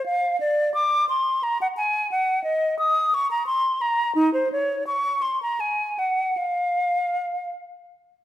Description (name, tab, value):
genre	classical, baroque-style fantasia for unaccompanied flute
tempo	51-59 BPM (dotted quarters)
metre	6/8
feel	rubato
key	unclear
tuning	A4 = 445 Hz
part	hollow concert flute	solo	0.0-7.5 s	Eb4 to Eb6	-21 LUFS	equal	none
room	moderate recital hall reverb, RT60 1.5 s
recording	none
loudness	-21 LUFS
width	side -13 dB against mid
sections	0.0-8.2 A section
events	none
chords	none